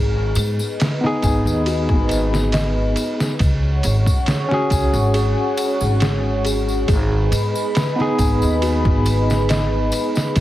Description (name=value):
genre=trip hop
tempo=69 BPM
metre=4/4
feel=straight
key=G# minor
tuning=A4 = 441 Hz
part: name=dark analog pad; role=sustained chords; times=0.4-10.4 s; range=G#4 to C#6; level=-25 LUFS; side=right 1 dB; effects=chorus
part: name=music box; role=arpeggios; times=0.0-10.4 s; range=F#4 to G#5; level=-28 LUFS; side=left 4 dB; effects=tape echo
part: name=upright bass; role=bass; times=0.0-10.4 s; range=G#1 to G#2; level=-20 LUFS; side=equal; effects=none
part: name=trip hop sampler-style drum kit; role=drums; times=0.4-10.4 s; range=kick drum, ride cymbal, snare drum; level=-22 LUFS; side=equal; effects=none
part: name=tambourine and triangle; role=percussion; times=0.4-10.4 s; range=none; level=-32 LUFS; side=left 2 dB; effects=none
part: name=barky tine electric piano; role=accompaniment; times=1.0-10.4 s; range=B3 to G#4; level=-22 LUFS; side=left 1 dB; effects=tremolo, low-pass filter, tape echo
room=small room ambience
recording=heavily compressed radio sound, multiband compression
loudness=-16 LUFS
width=side -14 dB against mid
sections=0.0-10.4 A section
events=none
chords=0.0 G#m; 3.4 C#sus4; 6.9 G#m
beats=0.80 1.67 2.54 | 3.41 4.28 5.15 6.02 | 6.89 7.76 8.63 9.50 | 10.37